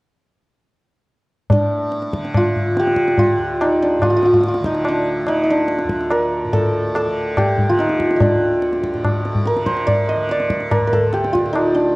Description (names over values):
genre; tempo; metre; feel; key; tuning
indian classical, Hindustani; 143 BPM; 4/4; straight; D raga bhairavi; A4 = 441 Hz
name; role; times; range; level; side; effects
santur; melody; 1.5-12.0 s; D4 to Eb5; -17 LUFS; equal; none
tanpura; drone; 1.5-12.0 s; D2 to D3; -26 LUFS; right 1 dB; none
tabla; percussion; 1.5-11.7 s; none; -20 LUFS; left 1 dB; none
room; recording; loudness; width
moderate recital hall reverb, RT60 1.4 s; worn, warbling old tape, cassette tape, warbly pitch drift; -15 LUFS; side -22 dB against mid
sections
1.5-12.0 A section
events
none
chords
none